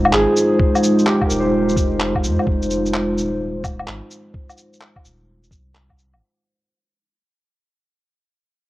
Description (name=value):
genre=future garage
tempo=128 BPM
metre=4/4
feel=swing 65% on 16ths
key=F minor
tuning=A4 = 440 Hz
part: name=felt-muted upright piano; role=accompaniment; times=0.0-3.1 s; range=Bb3 to C5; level=-22 LUFS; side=right 1 dB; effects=sidechain pumping, cassette tape, analog delay
part: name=dark analog pad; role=sustained chords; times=0.0-6.2 s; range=Ab3 to C5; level=-18 LUFS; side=equal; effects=chorus, sidechain pumping, cassette tape
part: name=warm sub bass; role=bass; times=0.0-6.2 s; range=Eb1 to F2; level=-27 LUFS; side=equal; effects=sidechain pumping
part: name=electronic woodblock, handclaps and shaker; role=drums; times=0.1-6.2 s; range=none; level=-22 LUFS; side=left 1 dB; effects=small room ambience, cassette tape
part: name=electronic kick drum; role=drums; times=0.6-6.0 s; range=none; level=-21 LUFS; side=equal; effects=small room ambience, cassette tape
room=moderate spring reverb, RT60 1.9 s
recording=home recording on cassette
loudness=-16 LUFS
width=side -16 dB against mid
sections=0.0-6.2 A section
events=fade-out 0.0-6.2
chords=0.0 Fm9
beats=0.12 | 0.59 1.06 1.53 2.00 | 2.47 2.93 3.40 3.87 | 4.34 4.81 5.28 5.75